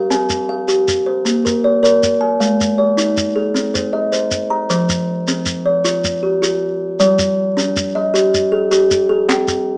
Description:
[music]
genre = southern african traditional, mbira-style interlocking cycle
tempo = 104 BPM (dotted quarters)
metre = 12/8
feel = straight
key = F equiheptatonic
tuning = A4 = 440 Hz
[part]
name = kalimba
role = arpeggios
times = 0.0-9.8 s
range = F3 to Bb5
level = -17 LUFS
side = equal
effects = none
[part]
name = shekere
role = percussion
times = 0.1-9.7 s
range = none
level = -24 LUFS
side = equal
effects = none
[part]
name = group handclap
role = percussion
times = 9.3-9.6 s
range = none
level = -25 LUFS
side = equal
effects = none
[sound]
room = light reverb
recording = small speaker sound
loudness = -16 LUFS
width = mono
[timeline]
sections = 0.0-4.7 A section; 4.7-9.8 B section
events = none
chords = 0.1 C5; 1.3 Bb; 2.4 Ab5; 3.6 Cm; 4.7 F5; 7.0 G5

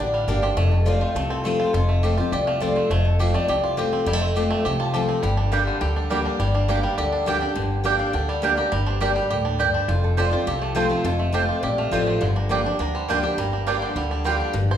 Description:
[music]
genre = bluegrass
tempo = 206 BPM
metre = 4/4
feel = straight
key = G minor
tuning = A4 = 440 Hz
[part]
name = bluegrass banjo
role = melody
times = 0.0-14.8 s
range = D3 to C5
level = -28 LUFS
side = right 3 dB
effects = none
[part]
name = lap resonator guitar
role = melody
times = 0.0-14.2 s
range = G4 to A5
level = -28 LUFS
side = left 1 dB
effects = none
[part]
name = picked steel-string acoustic guitar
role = accompaniment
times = 0.0-14.8 s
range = F2 to G4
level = -25 LUFS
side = left 2 dB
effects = none
[part]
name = upright bass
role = bass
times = 0.0-14.8 s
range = F1 to D2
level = -24 LUFS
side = equal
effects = none
[part]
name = mandolin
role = stabs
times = 5.5-14.3 s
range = Bb3 to A5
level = -26 LUFS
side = right 5 dB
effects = none
[sound]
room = wet recital hall reverb, RT60 1.6 s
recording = recorded in a church or concert hall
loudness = -20 LUFS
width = side -10 dB against mid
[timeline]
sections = 0.0-14.5 A section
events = none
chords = 0.0 Gm; 0.6 F; 5.2 Gm; 9.9 F; 12.2 Gm7

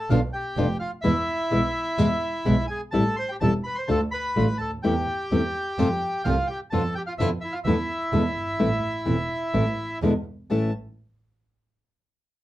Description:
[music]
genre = tango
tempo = 127 BPM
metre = 4/4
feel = rubato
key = A minor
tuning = A4 = 440 Hz
[part]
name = bandoneon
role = melody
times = 0.0-10.7 s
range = E4 to C6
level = -27 LUFS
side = equal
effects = none
[part]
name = nylon-string guitar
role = accompaniment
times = 0.1-10.7 s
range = A2 to F4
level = -24 LUFS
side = left 2 dB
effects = none
[part]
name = clear double bass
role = bass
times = 0.1-10.7 s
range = E1 to F2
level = -27 LUFS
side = right 2 dB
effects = none
[sound]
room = light reverb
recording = dark, warm production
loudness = -22 LUFS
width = side -14 dB against mid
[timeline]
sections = 0.0-10.5 A section; 10.5-12.4 B section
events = none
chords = 0.1 Bdim; 1.0 E; 2.9 Am7; 3.9 Dm; 4.8 Am/E; 5.8 F; 6.7 Bdim/F; 7.7 E7sus4; 8.1 E7; 8.6 Am; 10.0 E7; 10.5 A

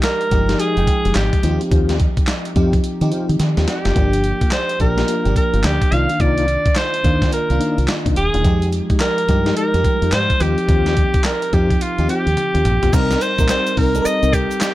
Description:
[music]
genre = R&B, new jack swing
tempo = 107 BPM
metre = 4/4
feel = swing 63% on 16ths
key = C minor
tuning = A4 = 440 Hz
[part]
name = bright alto saxophone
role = melody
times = 0.0-14.7 s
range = F4 to F5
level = -20 LUFS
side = right 1 dB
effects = none
[part]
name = FM electric piano with soft pad layer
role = accompaniment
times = 0.0-14.7 s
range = Eb3 to G5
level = -23 LUFS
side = equal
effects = chorus
[part]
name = mellow tonewheel organ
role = stabs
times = 0.0-14.3 s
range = Ab3 to Bb4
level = -26 LUFS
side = left 4 dB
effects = chorus vibrato, slow rotary speaker
[part]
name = dusty soul sampler-style drum kit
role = drums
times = 0.0-14.7 s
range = crash cymbal, handclaps, hi-hat, kick drum, snare drum, toms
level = -19 LUFS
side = equal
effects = none
[part]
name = deep dub fingered electric bass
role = bass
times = 0.3-14.4 s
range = Eb1 to Eb3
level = -19 LUFS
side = equal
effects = none
[part]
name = tube shaker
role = percussion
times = 12.9-14.7 s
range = none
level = -34 LUFS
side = right 7 dB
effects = none
[sound]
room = little or no reverb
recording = none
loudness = -14 LUFS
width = side -16 dB against mid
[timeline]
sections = 0.0-12.9 A section; 12.9-14.7 B section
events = drum fill 3.4-4.0, 12.4-12.9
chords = 0.0 Fm9; 1.4 Eb69; 4.0 Gm7; 5.9 Cm11; 8.4 Fm9; 10.4 Eb69; 12.9 Cm7

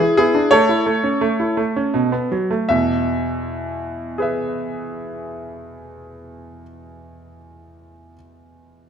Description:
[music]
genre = classical-period piano sonatina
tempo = 82 BPM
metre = 3/4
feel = straight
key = E major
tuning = A4 = 445 Hz
[part]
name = clear concert grand piano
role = solo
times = 0.0-8.9 s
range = E2 to E5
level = -17 LUFS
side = right 1 dB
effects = none
[sound]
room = moderate recital hall reverb, RT60 1.6 s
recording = none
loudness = -17 LUFS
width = side -8 dB against mid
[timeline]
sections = 0.0-2.7 A section; 2.7-7.1 B section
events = slowing down 0.0-2.7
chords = 0.0 E7; 0.5 A; 1.9 B5; 2.7 E

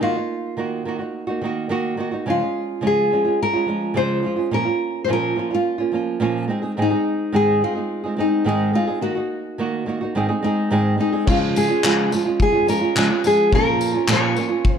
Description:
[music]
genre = acoustic pop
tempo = 107 BPM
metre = 4/4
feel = straight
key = Db major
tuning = A4 = 439 Hz
[part]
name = nylon-string guitar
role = melody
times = 0.0-14.8 s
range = Eb4 to Db5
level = -21 LUFS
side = left 2 dB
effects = none
[part]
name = nylon-string guitar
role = accompaniment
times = 0.0-14.8 s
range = Ab2 to Ab4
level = -21 LUFS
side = right 3 dB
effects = none
[part]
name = clear upright piano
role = accompaniment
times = 11.3-14.8 s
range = Db4 to Bb4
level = -32 LUFS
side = left 9 dB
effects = none
[part]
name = loose indie drum kit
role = drums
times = 11.3-14.8 s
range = crash cymbal, handclaps, kick drum, tambourine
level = -22 LUFS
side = left 1 dB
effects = none
[sound]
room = moderate plate reverb, RT60 1.7 s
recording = dark, warm production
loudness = -18 LUFS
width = side -7 dB against mid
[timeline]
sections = 0.0-11.3 A section; 11.3-14.8 B section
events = none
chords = 0.0 Ebm; 2.3 Db; 4.5 Bbm; 6.5 Ab; 9.0 Ebm; 10.2 Ab; 11.3 Db; 13.5 Bbm

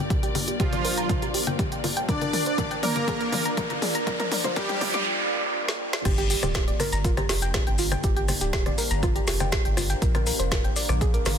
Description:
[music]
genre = melodic techno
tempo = 121 BPM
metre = 4/4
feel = straight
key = G minor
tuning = A4 = 442 Hz
[part]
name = deep dark ambient pad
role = sustained chords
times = 0.0-11.4 s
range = Bb3 to D5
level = -34 LUFS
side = equal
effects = chorus, built-in reverb, sidechain pumping
[part]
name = soft round pluck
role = arpeggios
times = 0.0-11.3 s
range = F4 to D6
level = -30 LUFS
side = right 1 dB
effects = chorus, cassette tape, sidechain pumping, digital delay
[part]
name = round analog bass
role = bass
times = 0.0-11.4 s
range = D1 to Bb1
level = -29 LUFS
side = equal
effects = sidechain pumping, high-pass filter
[part]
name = riser and noise sweep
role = sound effects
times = 1.7-6.1 s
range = none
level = -33 LUFS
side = right 2 dB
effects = none
[part]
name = dark studio string section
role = texture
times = 0.0-5.1 s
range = F4 to D5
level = -38 LUFS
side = left 2 dB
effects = none
[part]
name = deep house drum kit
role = drums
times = 0.1-11.4 s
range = congas, crash cymbal, hi-hat, rim click, snare drum, toms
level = -28 LUFS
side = left 2 dB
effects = soft clipping on snare, sidechain pumping on hats, sidechain pumping on toms, sidechain pumping on perc, sidechain pumping on cymbals
[part]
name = electronic kick drum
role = drums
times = 0.1-11.1 s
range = none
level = -27 LUFS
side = equal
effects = none
[part]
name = soft supersaw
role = melody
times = 0.6-5.1 s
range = F3 to D4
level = -32 LUFS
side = equal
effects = cassette tape, tape echo
[part]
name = big bright polysynth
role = second line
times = 0.6-5.1 s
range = F4 to D5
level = -33 LUFS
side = equal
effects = chorus, sidechain pumping, digital delay
[part]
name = maracas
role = percussion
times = 6.1-11.4 s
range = none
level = -35 LUFS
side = left 5 dB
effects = none
[sound]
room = light reverb, digital ambience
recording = dense, heavily limited modern master, high-pass filter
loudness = -22 LUFS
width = side -8 dB against mid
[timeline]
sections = 0.0-6.1 A section; 6.1-11.4 B section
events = build-up 0.0-6.1; drum fill 0.0-5.1, 5.7-6.1; filter sweep on synth arpeggio sound 0.0-6.1; filter sweep 0.0-6.1; riser 1.7-5.1; noise sweep 4.1-6.1; drop 6.1-11.4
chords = 0.0 Gm; 2.1 Bb; 6.1 Gm; 10.0 Bb

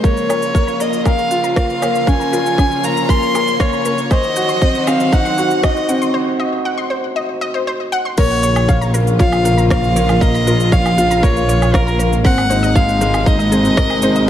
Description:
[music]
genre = piano and strings electronica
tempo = 118 BPM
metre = 4/4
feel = straight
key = Bb minor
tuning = A4 = 442 Hz
[part]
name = warm violin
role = melody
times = 0.0-14.3 s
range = Bb4 to C6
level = -19 LUFS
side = equal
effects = none
[part]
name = clear symphonic string section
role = sustained chords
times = 0.0-14.3 s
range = C3 to Db5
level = -25 LUFS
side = equal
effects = sidechain pumping, low-pass filter
[part]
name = analog pluck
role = arpeggios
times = 0.0-14.2 s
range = Ab4 to C6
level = -25 LUFS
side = left 2 dB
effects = chorus, cassette tape, sidechain pumping, ping-pong delay
[part]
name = warm upright piano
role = riff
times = 0.0-14.3 s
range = Ab3 to F5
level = -18 LUFS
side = left 1 dB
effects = ping-pong delay
[part]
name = clear studio double bass section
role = bass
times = 0.0-14.3 s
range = Ab1 to C2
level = -19 LUFS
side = equal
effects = sidechain pumping, high-pass filter
[part]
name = electronic kick drum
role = drums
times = 0.0-13.9 s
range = none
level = -14 LUFS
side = equal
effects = overdrive
[part]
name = organic electronic drum kit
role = drums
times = 0.0-14.3 s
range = crash cymbal, rim click, shaker, woodblock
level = -26 LUFS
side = right 1 dB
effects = overdrive
[sound]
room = moderate lush hall reverb, RT60 1.6 s, small room ambience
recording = none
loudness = -13 LUFS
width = side -10 dB against mid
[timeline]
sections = 0.0-8.2 A section; 8.2-14.3 B section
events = build-up 0.0-8.2; filter sweep on string section 0.0-8.2; filter sweep on synth arpeggio sound 0.0-8.2; break 6.1-8.2; drop 8.2-14.3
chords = 0.0 Bbm; 4.1 Cdim; 8.2 Bbm; 12.2 Abadd9

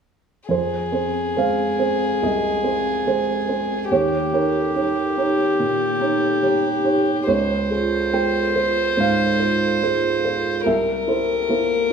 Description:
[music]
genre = neoclassical piano and strings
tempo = 71 BPM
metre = 4/4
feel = rubato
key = F minor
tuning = A4 = 440 Hz
[part]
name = rich violin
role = melody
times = 0.5-11.9 s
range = G4 to C5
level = -21 LUFS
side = left 2 dB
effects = none
[part]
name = felt-muted upright piano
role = accompaniment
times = 0.5-11.9 s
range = C2 to G5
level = -20 LUFS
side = right 3 dB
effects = none
[sound]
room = moderate scoring stage reverb, RT60 1.6 s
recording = studio ambience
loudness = -18 LUFS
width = side -6 dB against mid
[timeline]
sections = 0.5-11.9 A section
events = none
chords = 0.5 Fm7; 3.9 Eb7; 7.3 Dbmaj7; 10.7 C7

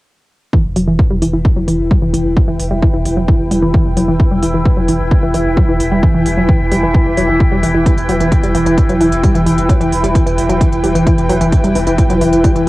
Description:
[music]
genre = driving peak-time techno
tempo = 131 BPM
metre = 4/4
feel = straight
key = E minor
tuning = A4 = 444 Hz
[part]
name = analog pluck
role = riff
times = 0.5-12.6 s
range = E3 to G3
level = -17 LUFS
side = equal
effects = chorus, phaser, overdrive, sidechain pumping, cassette tape, analog delay
[part]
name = overtone-sweeping drone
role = drone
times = 0.9-12.7 s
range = E3 to E4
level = -20 LUFS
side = left 1 dB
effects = chorus, built-in reverb, sidechain pumping, cassette tape
[part]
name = electronic kick drum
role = drums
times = 0.5-12.5 s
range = none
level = -13 LUFS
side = equal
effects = none
[part]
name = granular cloud pad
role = texture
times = 1.6-12.7 s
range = E4 to G5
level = -18 LUFS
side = equal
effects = built-in reverb, sidechain pumping, cassette tape
[part]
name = warm sub bass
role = bass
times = 0.6-12.7 s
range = E1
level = -20 LUFS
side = equal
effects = overdrive, sidechain pumping, low-pass filter
[part]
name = electronic hi-hat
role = drums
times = 0.8-12.6 s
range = none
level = -28 LUFS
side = right 1 dB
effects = sidechain pumping on hats
[sound]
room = little or no reverb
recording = home recording on cassette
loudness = -10 LUFS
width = side -18 dB against mid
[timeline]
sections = 0.5-12.7 A section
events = filter sweep on synth arpeggio sound 0.5-12.7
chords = 0.5 Em

